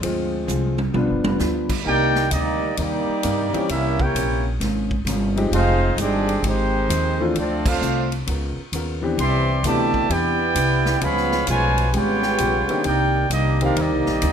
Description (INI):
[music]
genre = jazz, big band swing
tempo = 131 BPM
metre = 4/4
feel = swing 66% on 8ths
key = C minor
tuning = A4 = 444 Hz
[part]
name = hollow-body jazz guitar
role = accompaniment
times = 0.0-14.3 s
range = C3 to B4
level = -30 LUFS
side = left 2 dB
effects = none
[part]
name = warm grand piano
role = accompaniment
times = 0.0-14.2 s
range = C3 to G4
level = -25 LUFS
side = left 2 dB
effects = none
[part]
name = upright bass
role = bass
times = 0.0-14.3 s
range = F1 to G2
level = -23 LUFS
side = equal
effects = none
[part]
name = swinging big-band drum kit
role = drums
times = 0.0-14.3 s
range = crash cymbal, hi-hat, kick drum, ride cymbal, snare drum, toms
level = -29 LUFS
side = equal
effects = none
[part]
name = mellow trombone section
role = sustained chords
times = 1.2-1.8 s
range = G3 to B4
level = -34 LUFS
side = right 2 dB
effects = none
[part]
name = warm trombone section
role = second line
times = 1.8-14.3 s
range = B2 to G4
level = -25 LUFS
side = right 1 dB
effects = none
[part]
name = mellow trumpet section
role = melody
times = 1.9-14.3 s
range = Ab3 to C6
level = -22 LUFS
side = right 1 dB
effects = none
[sound]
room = light reverb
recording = minimal, uncompressed stereo recording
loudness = -18 LUFS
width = side -8 dB against mid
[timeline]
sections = 0.0-1.9 A section; 1.9-14.3 B section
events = grand piano solo 0.0-1.9; drum fill 0.5-1.4; band accent 7.6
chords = 0.0 Dm7b5; 0.9 G7; 1.9 Cm9; 3.7 C7b9; 5.5 Fm9; 7.4 Dm7; 8.3 Db13; 9.2 Cmaj9; 11.0 Db7#11; 12.8 Cm9